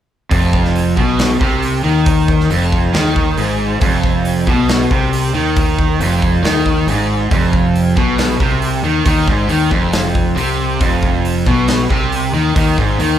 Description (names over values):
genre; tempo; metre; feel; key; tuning
hard rock; 137 BPM; 4/4; straight; unclear; A4 = 439 Hz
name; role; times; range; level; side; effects
cranked stack guitar; riff; 0.3-13.2 s; F2 to Eb3; -17 LUFS; right 6 dB; overdrive
overdriven semi-hollow guitar; riff; 0.3-13.2 s; F2 to Eb3; -18 LUFS; left 6 dB; none
growling fingered electric bass; bass; 0.3-13.2 s; F1 to Eb2; -19 LUFS; equal; overdrive
big rock drum kit; drums; 0.3-13.1 s; hi-hat, kick drum, snare drum; -18 LUFS; equal; none
room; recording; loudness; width
moderate large studio reverb, RT60 0.9 s; band playing live in one room; -12 LUFS; side -10 dB against mid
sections
0.3-13.2 A section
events
none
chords
0.3 F5